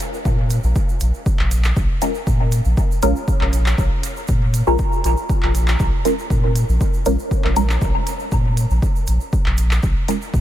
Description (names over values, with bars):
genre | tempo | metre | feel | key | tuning
dub techno | 119 BPM | 4/4 | straight | unclear | A4 = 439 Hz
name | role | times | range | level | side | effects
deep house drum kit | drums | 0.0-10.2 s | handclaps, hi-hat | -29 LUFS | equal | dub echo
egg shaker | percussion | 0.0-10.4 s | none | -36 LUFS | right 8 dB | none
soft dub sub bass | bass | 0.3-10.4 s | Bb1 to Bb2 | -18 LUFS | equal | sidechain pumping
electronic kick drum | drums | 0.3-10.4 s | none | -20 LUFS | equal | none
filtered dub chord stab | stabs | 2.0-10.2 s | Ab3 to Bb4 | -23 LUFS | equal | phaser, sidechain pumping, dub echo
room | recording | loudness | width
light reverb | none | -16 LUFS | side -12 dB against mid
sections
0.0-10.4 A section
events
none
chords
none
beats
0.25 | 0.76 1.26 1.77 2.27 | 2.77 3.28 3.78 4.29 | 4.79 5.29 5.80 6.30 | 6.81 7.31 7.82 8.32 | 8.82 9.33 9.83 10.34